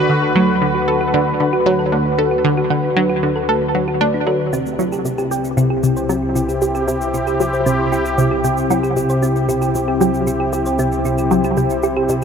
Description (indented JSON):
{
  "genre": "ambient, sequencer-driven space music",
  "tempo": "115 BPM",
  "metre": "4/4",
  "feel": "straight",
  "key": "C lydian",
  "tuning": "A4 = 444 Hz",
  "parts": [
    { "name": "sweeping resonant pad", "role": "sustained chords", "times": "0.0-12.2 s", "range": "D2 to B4", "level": "-18 LUFS", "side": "left 2 dB", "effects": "chorus" },
    { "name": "thumb-piano-like synth pluck", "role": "arpeggios", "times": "0.0-12.0 s", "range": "A3 to G5", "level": "-23 LUFS", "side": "right 2 dB", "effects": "chorus, auto-pan, vintage 12-bit sampler grit, analog delay" },
    { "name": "analog pluck", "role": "riff", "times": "0.0-12.2 s", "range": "C3 to A4", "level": "-19 LUFS", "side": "right 1 dB", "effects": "chorus, phaser, analog delay" },
    { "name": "fat analog bass", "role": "bass", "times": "4.5-12.2 s", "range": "C2", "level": "-26 LUFS", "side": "equal", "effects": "none" },
    { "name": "bongos and cabasa", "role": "percussion", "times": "4.5-12.2 s", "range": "none", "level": "-30 LUFS", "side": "left 3 dB", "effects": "analog delay" }
  ],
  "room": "wet huge ambient reverb, RT60 8.5 s",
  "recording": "none",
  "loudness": "-15 LUFS",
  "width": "side -7 dB against mid",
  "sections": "0.0-4.5 A section; 4.5-12.2 B section",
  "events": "filter sweep on synth arpeggio sound 4.5-12.2",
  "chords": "0.0 D; 4.5 C"
}